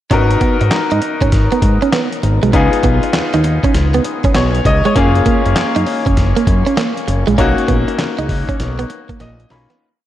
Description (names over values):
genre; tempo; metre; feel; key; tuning
R&B, new jack swing; 99 BPM; 4/4; swing 65% on 16ths; G# dorian; A4 = 440 Hz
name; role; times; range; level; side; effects
bright grand piano; accompaniment; 0.1-9.8 s; A#3 to B5; -17 LUFS; left 3 dB; tube saturation, shimmer reverb
direct-recorded clean electric guitar; riff; 0.1-9.8 s; G#3 to D#4; -19 LUFS; right 5 dB; wide subtle chorus, shimmer reverb
fat analog bass; bass; 0.1-9.7 s; F#1 to G#2; -16 LUFS; equal; none
dusty soul sampler-style drum kit; drums; 0.1-9.8 s; handclaps, hi-hat, kick drum, snare drum; -17 LUFS; equal; none
room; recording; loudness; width
moderate lush hall reverb, RT60 2.3 s; dark, warm production; -12 LUFS; side -12 dB against mid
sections
0.1-9.8 verse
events
fade-out 7.4-9.8; grand piano fill 8.9-9.8; drum fill 9.2-9.8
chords
0.1 G#m7; 2.5 C#7; 5.0 F#maj7; 7.4 Bmaj7